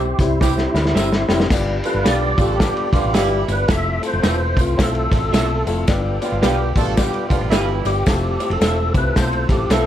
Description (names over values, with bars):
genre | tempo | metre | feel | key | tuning
uptempo 1960s-style soul | 110 BPM | 4/4 | swing 61% on 8ths | G mixolydian | A4 = 439 Hz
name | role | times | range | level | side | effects
tonewheel organ | melody | 0.0-9.9 s | E4 to E5 | -23 LUFS | equal | overdrive, chorus vibrato, slow rotary speaker, analog delay
dark upright piano | accompaniment | 0.0-9.9 s | G3 to C5 | -24 LUFS | left 4 dB | none
mellow tonewheel organ | sustained chords | 0.0-9.9 s | G4 to E6 | -30 LUFS | left 1 dB | slow rotary speaker
hollow-body short-scale fingered electric bass | bass | 0.0-9.9 s | E1 to D2 | -22 LUFS | equal | none
vintage drum kit | drums | 0.2-9.9 s | crash cymbal, hi-hat, kick drum, ride cymbal, snare drum | -20 LUFS | equal | none
tambourine | percussion | 0.2-9.9 s | none | -36 LUFS | left 20 dB | none
mellow horn section | second line | 0.4-7.9 s | B2 to A4 | -25 LUFS | right 8 dB | none
electric guitar through a small old amp | stabs | 0.9-9.8 s | F4 to F5 | -26 LUFS | right 4 dB | wide subtle chorus
room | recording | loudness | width
light reverb | dark, warm production | -16 LUFS | side -11 dB against mid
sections
0.0-1.5 A section; 1.5-9.9 B section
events
tonewheel organ solo 0.0-1.5; drum fill 0.4-1.5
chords
0.0 C; 1.5 G7; 3.7 Fmaj7; 5.9 G7; 8.1 Fmaj7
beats
0.41 0.95 | 1.50 2.05 2.60 3.14 | 3.69 4.24 4.79 5.33 | 5.88 6.43 6.97 7.52 | 8.07 8.62 9.16 9.71